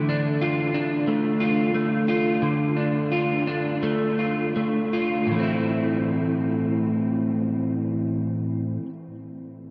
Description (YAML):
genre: dream pop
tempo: 78-92 BPM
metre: 4/4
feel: straight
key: A minor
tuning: A4 = 439 Hz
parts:
  - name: electric guitar at the edge of break-up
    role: solo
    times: 0.0-8.9 s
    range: A2 to F4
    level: -24 LUFS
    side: equal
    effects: ensemble chorus, analog delay
room: wet huge ambient reverb, RT60 8.4 s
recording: dreamy mix soaked in reverb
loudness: -24 LUFS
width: mono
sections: 0.0-5.3 A section; 5.3-8.4 B section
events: slowing down 0.0-5.3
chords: 0.0 Dm; 5.3 Am